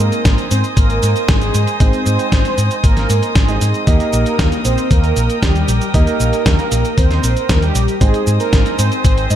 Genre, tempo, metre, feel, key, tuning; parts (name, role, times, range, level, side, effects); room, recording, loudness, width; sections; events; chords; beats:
italo disco; 116 BPM; 4/4; straight; A4 = 440 Hz
mellow synth brass; melody; 0.0-9.4 s; G3 to Eb5; -20 LUFS; right 1 dB; chorus, cassette tape, tape echo, shimmer reverb
rich chamber string section; sustained chords; 0.0-9.4 s; Bb4 to Eb6; -24 LUFS; right 1 dB; shimmer reverb
clear baby grand piano; stabs; 0.0-9.4 s; Ab3 to Eb5; -24 LUFS; right 4 dB; shimmer reverb
hollow-body short-scale fingered electric bass; bass; 0.0-9.4 s; Ab1 to Ab2; -16 LUFS; equal
dusty soul sampler-style drum kit; drums; 0.1-9.4 s; cabasa, hi-hat, snare drum; -21 LUFS; equal; gated reverb
electronic kick drum; drums; 0.3-9.1 s; -13 LUFS; equal
light reverb; -12 LUFS; side -11 dB against mid
0.0-9.4 A section
0.0 Ab; 3.9 Eb; 8.0 Ab
0.25 0.77 1.29 | 1.80 2.32 2.84 3.35 | 3.87 4.39 4.91 5.42 | 5.94 6.46 6.98 7.49 | 8.01 8.53 9.04